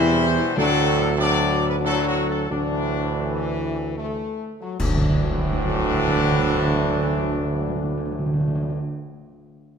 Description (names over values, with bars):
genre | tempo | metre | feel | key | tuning
classical, ceremonial fanfare | 71-102 BPM | 3/4 | straight | D major | A4 = 439 Hz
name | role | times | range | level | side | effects
mellow trumpet section | melody | 0.0-8.8 s | D4 to D5 | -27 LUFS | left 3 dB | none
bright trombone section | sustained chords | 0.0-8.8 s | A2 to F#3 | -28 LUFS | right 2 dB | none
warm French horn section | sustained chords | 0.0-8.8 s | E3 to E4 | -26 LUFS | left 6 dB | none
mellow tuba | bass | 0.0-8.8 s | D2 to E2 | -24 LUFS | right 4 dB | none
timpani | percussion | 0.6-1.5, 4.8-8.8 s | D3 | -26 LUFS | right 1 dB | none
clash cymbals and concert bass drum | percussion | 4.8-6.4 s | none | -27 LUFS | left 1 dB | none
room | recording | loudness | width
moderate recital hall reverb, RT60 1.6 s | none | -20 LUFS | side -6 dB against mid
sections
0.0-4.8 A section; 4.8-9.7 B section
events
slowing down 0.0-4.8; band accent 4.8-5.6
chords
0.0 C; 0.6 D; 2.5 Dadd9